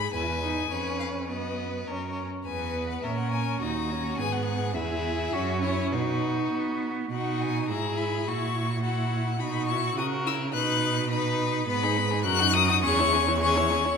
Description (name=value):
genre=quick classical-period movement for string quartet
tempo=104 BPM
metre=2/4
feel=straight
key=B major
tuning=A4 = 441 Hz
part: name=rich violin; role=melody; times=0.0-14.0 s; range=B4 to F#6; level=-29 LUFS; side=left 10 dB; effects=none
part: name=rich violin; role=second line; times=0.0-14.0 s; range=E4 to C#5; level=-32 LUFS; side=left 3 dB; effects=none
part: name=rich viola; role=accompaniment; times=0.0-14.0 s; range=B3 to F#4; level=-31 LUFS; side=right 2 dB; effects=none
part: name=clear cello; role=bass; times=0.0-14.0 s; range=D#2 to B3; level=-30 LUFS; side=right 4 dB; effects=none
room=wet concert hall reverb, RT60 2.0 s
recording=minimal, uncompressed stereo recording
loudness=-24 LUFS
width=side -6 dB against mid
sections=0.0-7.1 A section; 7.1-14.0 B section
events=none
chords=0.1 E; 0.7 C#7/E#; 1.3 B/F#; 1.9 F#; 2.5 E; 3.0 A#m7b5; 3.6 D#m7; 4.2 G#m; 4.8 E; 5.3 F#5; 5.9 B; 7.7 E/G#; 8.3 F#7/A#; 9.4 B; 10.0 F#7/C#; 10.5 B; 11.7 G#m; 12.3 D#m/F#; 12.8 C#m/E